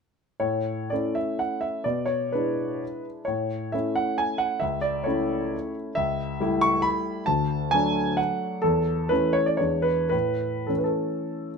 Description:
classical, romantic triple-time dance for piano with dotted rhythms; 105-146 BPM; 3/4; rubato; A major; A4 = 439 Hz
clear grand piano; solo; 0.4-11.6 s; C#2 to C#6; -23 LUFS; equal
light reverb; minimal, uncompressed stereo recording; -23 LUFS; side -5 dB against mid
0.4-11.6 A section
0.4 A; 1.9 E7/B; 3.3 A; 4.6 A/C#; 6.0 A7/C#; 7.3 D; 8.6 A/E; 9.6 E7; 10.1 A
| 0.42 0.91 1.39 | 1.86 2.34 2.83 | 3.27 3.73 4.19 | 4.63 5.08 5.54 | 5.97 6.42 6.86 | 7.28 7.71 8.18 | 8.64 9.11 9.61 | 10.14 10.69 11.24

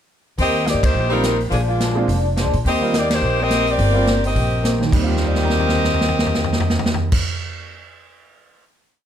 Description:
jazz, big band swing; 212 BPM; 4/4; swing 59% on 8ths; Eb major; A4 = 440 Hz
clear saxophone section; melody; 0.4-7.1 s; F3 to Eb5; -20 LUFS; left 1 dB
picked old ladder-braced acoustic guitar; accompaniment; 0.4-7.7 s; Bb2 to G4; -27 LUFS; left 3 dB
upright bass; bass; 0.4-7.1 s; F1 to Bb2; -21 LUFS; equal
swinging big-band drum kit; drums; 0.4-8.6 s; crash cymbal, hi-hat, kick drum, ride cymbal, snare drum, toms; -22 LUFS; equal
clear grand piano; accompaniment; 1.1-7.4 s; Eb2 to Bb6; -25 LUFS; right 5 dB
moderate large studio reverb, RT60 0.8 s; -16 LUFS; side -9 dB against mid
0.4-4.9 A section; 4.9-7.2 final chord
band accent 0.8, 3.1; drum fill 5.1-7.1
0.4 Eb6; 1.5 Bb7; 2.7 Eb6
| 0.39 0.67 0.95 1.24 | 1.52 1.80 2.08 2.37 | 2.65 2.94 3.22 3.50 | 3.79 4.07 4.35 4.64 | 4.92 5.20 5.49 5.77 | 6.05 6.33 6.62 6.90

